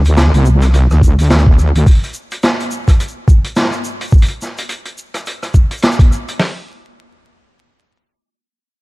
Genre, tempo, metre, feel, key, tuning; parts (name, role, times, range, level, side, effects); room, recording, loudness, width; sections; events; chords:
glitch hop; 106 BPM; 4/4; swing 59% on 16ths; A4 = 439 Hz
wobble bass; bass; 0.0-1.8 s; C2 to D2; -10 LUFS; equal; chorus
street-band drum kit; drums; 0.1-6.4 s; hi-hat, rim click, shaker, snare drum; -18 LUFS; equal
boom bap sampler-style drum kit; drums; 1.0-6.5 s; hi-hat, kick drum, snare drum; -9 LUFS; equal
little or no reverb; dark, warm production, vinyl crackle; -10 LUFS; side -22 dB against mid
0.0-6.4 A section; 6.4-8.7 B section
drop 0.0-6.4